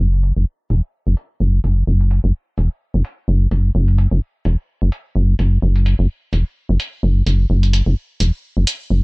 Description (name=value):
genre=minimal techno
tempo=128 BPM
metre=4/4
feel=swing 56% on 16ths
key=unclear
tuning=A4 = 440 Hz
part: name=rubbery square bass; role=bass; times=0.0-9.0 s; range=E1 to F#1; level=-14 LUFS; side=equal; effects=none
part: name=electronic hi-hat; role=drums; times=0.1-8.8 s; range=none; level=-25 LUFS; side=right 1 dB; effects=none
room=little or no reverb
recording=bright 1980s-style digital production, low-pass filter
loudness=-15 LUFS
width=side -30 dB against mid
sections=0.0-9.0 A section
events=filter sweep 0.0-9.0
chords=none